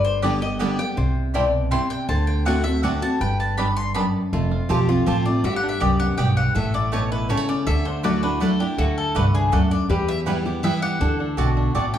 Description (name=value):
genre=bluegrass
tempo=161 BPM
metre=3/4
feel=straight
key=G major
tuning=A4 = 440 Hz
part: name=mandolin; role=melody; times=0.0-12.0 s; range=F#4 to C6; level=-27 LUFS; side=left 2 dB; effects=plate reverb
part: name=lap resonator guitar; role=second line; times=0.0-12.0 s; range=F4 to D5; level=-29 LUFS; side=left 5 dB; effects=none
part: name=picked steel-string acoustic guitar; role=accompaniment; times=0.0-12.0 s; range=E2 to G4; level=-23 LUFS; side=equal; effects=none
part: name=upright bass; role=bass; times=0.0-12.0 s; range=F1 to E2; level=-24 LUFS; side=equal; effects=none
part: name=bluegrass banjo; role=melody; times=0.2-12.0 s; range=G3 to G4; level=-32 LUFS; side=right 3 dB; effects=plate reverb
part: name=mandolin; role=stabs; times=0.2-11.8 s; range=A3 to A5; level=-30 LUFS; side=right 5 dB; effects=none
room=wet large studio reverb, RT60 0.9 s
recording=heard from further back in the room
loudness=-19 LUFS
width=side -10 dB against mid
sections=0.0-4.3 A section; 4.3-12.0 B section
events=none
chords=0.0 G; 1.0 C; 2.1 D7; 3.2 Gadd9; 4.3 F; 5.4 G; 6.6 A; 7.7 Dadd9; 8.8 D; 9.9 Em; 11.0 D7